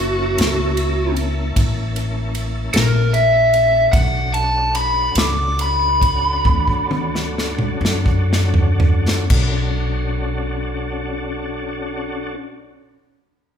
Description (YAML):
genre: slow blues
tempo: 39-51 BPM (dotted quarters)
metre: 12/8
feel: straight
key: B minor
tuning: A4 = 441 Hz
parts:
  - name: lead guitar through a small cranked amp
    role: melody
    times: 0.0-8.3 s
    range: F#4 to D6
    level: -17 LUFS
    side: equal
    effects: overdrive
  - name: tonewheel organ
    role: sustained chords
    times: 0.0-12.4 s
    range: A#3 to A5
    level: -26 LUFS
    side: left 2 dB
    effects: chorus vibrato, fast rotary speaker
  - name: upright bass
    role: bass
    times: 0.0-12.3 s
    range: F#1 to F#2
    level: -21 LUFS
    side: left 1 dB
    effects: none
  - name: natural country drum kit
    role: drums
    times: 0.4-9.5 s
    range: crash cymbal, kick drum, ride cymbal, snare drum, toms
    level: -20 LUFS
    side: equal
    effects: none
room: wet large studio reverb, RT60 1.4 s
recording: band playing live in one room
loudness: -16 LUFS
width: side -8 dB against mid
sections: 0.0-9.3 A section; 9.3-13.6 B section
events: lead electric guitar solo 0.0-9.3; slowing down 2.3-9.3; drum fill 6.4-9.3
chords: 0.0 F#7#9; 3.9 Bm9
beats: 0.38 1.56 2.74 | 3.93 5.16 6.45 7.82 | 9.29 10.84